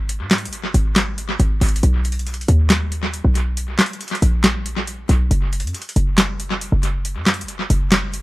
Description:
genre	hip hop, trap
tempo	138 BPM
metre	4/4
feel	half-time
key	unclear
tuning	A4 = 439 Hz
part	short 808-style bass	bass	0.0-8.2 s	Gb1 to Ab2	-18 LUFS	equal	none
part	booming analog drum machine	drums	0.1-8.2 s	handclaps, hi-hat, snare drum	-19 LUFS	equal	tape echo
room	little or no reverb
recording	echo-heavy mix, lossy compression artefacts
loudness	-17 LUFS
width	side -19 dB against mid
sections	0.0-8.2 A section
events	none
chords	none

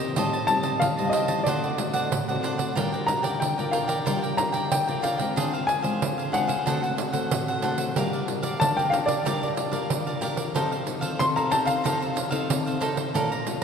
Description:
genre	samba and choro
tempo	92 BPM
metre	4/4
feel	straight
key	G minor from 8.0 s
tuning	A4 = 441 Hz
part	cavaquinho	accompaniment	0.0-13.6 s	D4 to Bb5	-30 LUFS	right 2 dB	none
part	nylon-string guitar	accompaniment	0.0-13.6 s	A2 to Bb4	-30 LUFS	left 4 dB	none
part	pandeiro	percussion	0.2-13.6 s	none	-28 LUFS	right 3 dB	none
part	dark baby grand piano	melody	0.5-12.8 s	D5 to C6	-27 LUFS	left 1 dB	none
room	wet cathedral reverb, RT60 5.4 s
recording	recorded in a church or concert hall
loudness	-23 LUFS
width	side -6 dB against mid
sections	0.0-8.0 A section; 8.0-13.6 B section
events	none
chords	0.2 Am7b5; 1.5 D7; 2.8 Gm7; 5.4 Dm7b5; 6.7 D7; 8.0 Gm7; 10.6 F7

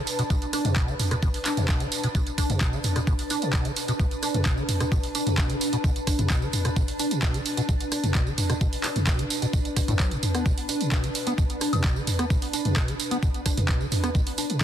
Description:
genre	acid house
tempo	130 BPM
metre	4/4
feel	straight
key	B minor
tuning	A4 = 440 Hz
part	acid bass, square	riff	0.0-14.6 s	A2 to D4	-29 LUFS	equal	wide subtle chorus, cassette tape, digital delay
part	granular cloud pad	texture	0.0-14.6 s	D4 to A5	-32 LUFS	equal	built-in reverb, sidechain pumping
part	punchy analog drum machine	drums	0.1-14.6 s	handclaps, hi-hat, rim click, tambourine, toms, woodblock	-27 LUFS	right 1 dB	none
part	electronic kick drum	drums	0.3-14.6 s	none	-25 LUFS	equal	none
room	digital ambience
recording	dense, heavily limited modern master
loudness	-22 LUFS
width	side -10 dB against mid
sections	0.0-14.6 A section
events	none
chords	0.0 Bm7

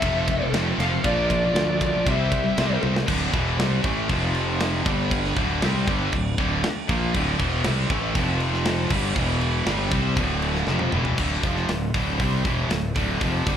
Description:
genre	heavy metal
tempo	118 BPM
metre	4/4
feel	straight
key	D minor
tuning	A4 = 439 Hz
part	bluesy overdriven lead guitar	melody	0.0-2.8 s	D5 to F5	-26 LUFS	left 2 dB	distortion, slapback echo, tape echo
part	high-gain lead guitar	second line	0.0-2.8 s	F4 to A4	-35 LUFS	right 5 dB	distortion, slapback echo, tape echo
part	high-gain distorted guitar	riff	0.0-13.6 s	D2 to C4	-29 LUFS	left 11 dB	distortion, slapback echo
part	high-gain distorted guitar	riff	0.0-13.6 s	D2 to C4	-30 LUFS	right 11 dB	distortion
part	tight distorted guitar	riff	0.0-13.6 s	D2 to C5	-30 LUFS	equal	distortion, slapback echo
part	fuzz fingered electric bass	bass	0.0-13.6 s	D1 to D2	-25 LUFS	equal	overdrive
part	tight metal drum kit	drums	0.0-13.6 s	crash cymbal, hi-hat, kick drum, ride cymbal, snare drum, toms	-27 LUFS	right 1 dB	none
room	little or no reverb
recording	live gig heard through the venue's PA, club reverb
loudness	-20 LUFS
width	side -9 dB against mid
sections	0.0-3.1 A section; 3.1-11.2 B section; 11.2-13.6 C section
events	drum fill 2.8, 10.7-11.2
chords	0.0 F; 1.0 Bb; 2.1 C; 3.1 D5; 4.1 F5; 4.9 G5; 5.4 Dm; 8.1 F5; 8.9 G5; 9.2 E5; 9.7 Dm

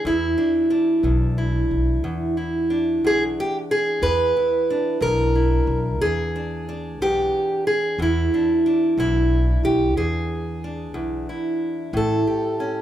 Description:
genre	acoustic country blues, solo or duo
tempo	61 BPM (dotted quarters)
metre	12/8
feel	straight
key	E mixolydian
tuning	A4 = 439 Hz
part	fingerpicked steel-string acoustic guitar	melody	0.0-12.8 s	E2 to B4	-20 LUFS	right 1 dB	none
part	upright bass	bass	0.0-12.2 s	A1 to E2	-24 LUFS	equal	none
room	moderate large studio reverb, RT60 0.9 s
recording	band playing live in one room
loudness	-19 LUFS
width	side -11 dB against mid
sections	0.0-12.8 A section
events	none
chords	0.0 E7; 11.9 A7

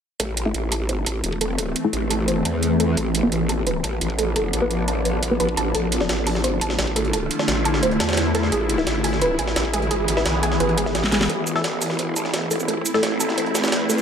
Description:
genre	dark technical drum and bass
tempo	173 BPM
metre	4/4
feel	straight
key	A harmonic minor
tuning	A4 = 439 Hz
part	swarming drone	sustained chords	1.0-14.0 s	D3 to G#4	-24 LUFS	equal	built-in reverb, phaser, sidechain pumping
part	soft round pluck	arpeggios	0.2-14.0 s	G#4 to A5	-27 LUFS	right 2 dB	lush chorus, sidechain pumping, dub echo
part	growl bass	bass	0.2-14.0 s	E1 to E2	-24 LUFS	equal	chorus, overdrive, sidechain pumping, high-pass filter
part	dubstep drum kit	drums	0.2-14.0 s	cabasa, hi-hat, snare drum	-25 LUFS	right 2 dB	studio reverb
part	electronic kick drum	drums	0.2-11.1 s	none	-34 LUFS	equal	high-pass filter on kick, studio reverb
part	filtered dub chord stab	stabs	0.5-13.0 s	A3 to E5	-27 LUFS	left 2 dB	phaser, cassette tape, dub echo
part	jungle sampler-style drum kit	drums	5.7-14.0 s	hi-hat, snare drum	-28 LUFS	equal	high-pass filter on hats, studio reverb, high-pass filter on snare, high-pass filter on room
room	moderate lush hall reverb, RT60 1.9 s, digital ambience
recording	dark, warm production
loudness	-19 LUFS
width	side -7 dB against mid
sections	0.2-11.3 A section; 11.3-14.0 B section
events	filter sweep on synth pluck 0.2-11.3; drum fill 11.0; build-up 11.3-14.0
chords	0.2 Am; 3.0 Bdim/A; 5.7 Dm/A; 8.5 E/A; 11.3 Am

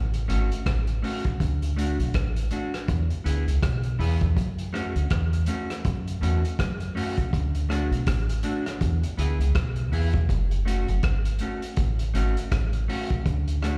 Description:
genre	roots reggae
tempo	81 BPM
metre	4/4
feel	swing 59% on 16ths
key	F# minor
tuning	A4 = 436 Hz
part	deep dub fingered electric bass	bass	0.0-13.8 s	F#1 to F#2	-27 LUFS	equal	none
part	vintage drum kit	drums	0.1-13.8 s	hi-hat, kick drum, rim click	-31 LUFS	equal	none
part	semi-hollow electric guitar	accompaniment	0.3-13.8 s	A3 to G#4	-35 LUFS	equal	tape echo, slapback echo
room	small room ambience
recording	live gig heard through the venue's PA, recital hall reverb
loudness	-26 LUFS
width	mono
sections	0.0-13.8 A section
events	none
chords	0.0 F#m; 1.4 D; 2.9 E; 4.4 F#m; 7.3 D; 8.8 E; 10.3 F#m; 13.3 D

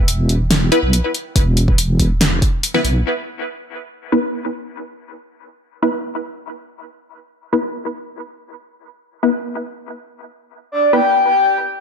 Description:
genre	deep dubstep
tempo	141 BPM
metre	4/4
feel	half-time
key	E minor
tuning	A4 = 438 Hz
part	deep soft wobble bass	bass	0.0-3.0 s	E1 to B1	-16 LUFS	equal	chorus, tube saturation
part	deep house drum kit	drums	0.1-2.9 s	hi-hat, snare drum	-18 LUFS	equal	none
part	filtered dub chord stab	stabs	0.7-11.0 s	B3 to B4	-20 LUFS	left 1 dB	phaser, dub echo
part	electronic kick drum	drums	1.4-2.5 s	none	-16 LUFS	equal	none
part	breathy flute-like synth lead	melody	10.7-11.6 s	D5 to G5	-14 LUFS	left 2 dB	lush chorus, dub echo
room	moderate digital room reverb, RT60 1.1 s, digital ambience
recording	none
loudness	-15 LUFS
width	side -6 dB against mid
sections	0.0-3.1 A section; 3.1-11.8 B section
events	drop 0.0-3.1; kick drops out 2.6-3.1; filter sweep on synth stab 3.1-11.8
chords	0.0 E5

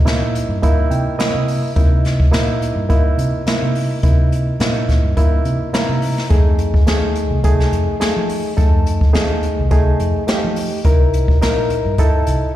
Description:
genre	straight-eighth soul blues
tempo	106 BPM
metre	4/4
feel	straight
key	unclear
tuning	A4 = 441 Hz
part	reed electric piano	accompaniment	0.0-12.5 s	A3 to Bb5	-20 LUFS	right 1 dB	overdrive, spring reverb, slapback echo
part	vintage muted fingered electric bass	bass	0.1-12.4 s	Bb1 to F3	-19 LUFS	equal	none
part	jazz brush drum kit	drums	0.1-12.4 s	hi-hat, kick drum, snare drum	-16 LUFS	equal	none
room	small room ambience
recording	live gig heard through the venue's PA, recital hall reverb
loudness	-14 LUFS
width	side -13 dB against mid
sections	0.0-12.6 A section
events	reed electric piano fill 0.6-1.8, 5.5-6.3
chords	0.0 C7#9; 6.3 F7#9; 10.9 C7#9

